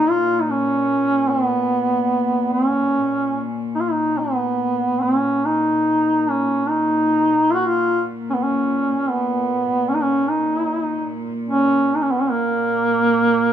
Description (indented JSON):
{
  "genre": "caucasian folk, Caucasian lament",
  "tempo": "74 BPM",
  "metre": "3/4",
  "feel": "rubato",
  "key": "Bb phrygian",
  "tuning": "A4 = 440 Hz",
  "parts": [
    { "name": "warm duduk", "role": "melody", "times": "0.0-13.5 s", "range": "Bb3 to Gb4", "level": "-17 LUFS", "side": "right 1 dB", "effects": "none" },
    { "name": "warm symphonic cello section", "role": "drone", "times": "0.0-13.5 s", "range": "Bb2", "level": "-27 LUFS", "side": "left 2 dB", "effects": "none" }
  ],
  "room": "wet spring reverb, RT60 1.8 s",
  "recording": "minimal, uncompressed stereo recording",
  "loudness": "-17 LUFS",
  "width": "side -10 dB against mid",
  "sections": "0.0-13.5 A section",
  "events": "none",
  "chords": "none",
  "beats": "| 0.08 0.88 1.68 | 2.50 3.32 4.15 | 4.99 5.84 6.67 | 7.49 8.29 9.09 | 9.89 10.70 11.51 | 12.31 13.13"
}